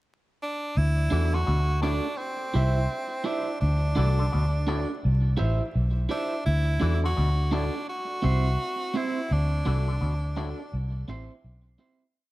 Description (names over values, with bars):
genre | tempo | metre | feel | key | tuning
reggae | 84 BPM | 4/4 | swing 63% on 16ths | D mixolydian | A4 = 438 Hz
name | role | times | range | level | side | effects
edgy tenor saxophone | melody | 0.4-10.7 s | C4 to F#4 | -32 LUFS | right 1 dB | tape echo
vintage muted fingered electric bass | bass | 0.8-11.8 s | A1 to E2 | -24 LUFS | equal | none
electric guitar at the edge of break-up | accompaniment | 1.1-12.0 s | C4 to E5 | -32 LUFS | right 3 dB | spring reverb, tape echo
auto-wah clav | arpeggios | 1.1-10.5 s | A2 to E3 | -38 LUFS | left 6 dB | overdrive
room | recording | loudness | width
digital ambience | dark, warm production, vinyl crackle | -24 LUFS | side -18 dB against mid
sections
0.0-0.8 pickup bar; 0.8-12.1 A section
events
fade-out 9.3-12.1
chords
0.0 N.C.; 0.8 D; 2.2 C; 3.6 D; 5.0 C; 6.5 D; 7.9 C; 9.3 D; 10.7 C